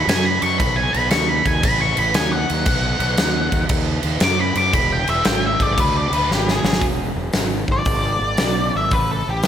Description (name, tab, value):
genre	blues rock power trio and southern rock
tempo	116 BPM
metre	4/4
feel	swing 66% on 8ths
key	E mixolydian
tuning	A4 = 440 Hz
part	octave-fuzz lead guitar	melody	0.0-9.5 s	G4 to D6	-20 LUFS	left 1 dB	distortion, slapback echo
part	fuzz fingered electric bass	bass	0.0-9.4 s	E1 to F#2	-23 LUFS	equal	overdrive
part	big rock drum kit	drums	0.1-9.5 s	crash cymbal, hi-hat, kick drum, snare drum	-20 LUFS	equal	none
room	moderate lush hall reverb, RT60 1.8 s, small room ambience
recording	big arena sound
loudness	-16 LUFS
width	side -9 dB against mid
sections	0.0-6.8 A section; 6.8-9.5 B section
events	lead electric guitar solo 0.0-6.8; drum fill 6.3-6.8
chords	0.0 B; 4.7 E7; 8.9 A7(no3)